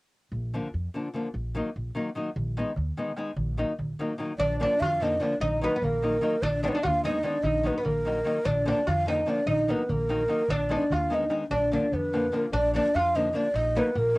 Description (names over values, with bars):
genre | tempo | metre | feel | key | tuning
balkan folk, Balkan wedding band | 295 BPM (eighths) | 5/8 | straight | Bb phrygian dominant | A4 = 437 Hz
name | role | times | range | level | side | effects
upright bass | bass | 0.3-14.2 s | Bb1 to F2 | -32 LUFS | equal | none
nylon-string guitar | accompaniment | 0.5-14.2 s | D3 to Eb4 | -29 LUFS | left 2 dB | cassette tape
darbuka | percussion | 2.4-12.5 s | none | -34 LUFS | right 1 dB | none
breathy ney | melody | 4.4-14.2 s | Bb4 to Gb5 | -26 LUFS | equal | none
oud | second line | 4.4-14.2 s | Bb3 to F4 | -31 LUFS | equal | cassette tape
room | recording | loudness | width
light reverb | home recording on cassette | -24 LUFS | side -22 dB against mid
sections
0.3-4.4 A section; 4.4-12.5 B section; 12.5-14.2 B section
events
drum fill 11.5-12.5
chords
0.3 Bb; 1.3 Ebm/Bb; 2.4 Abm/Bb; 3.4 Ebm/Bb; 4.4 Bb; 5.4 Ebm/Bb; 6.4 Abm/Bb; 7.4 Ebm/Bb; 8.5 Bb; 9.5 Ebm/Bb; 10.5 Abm/Bb; 11.5 Bb; 13.5 Ebm/Bb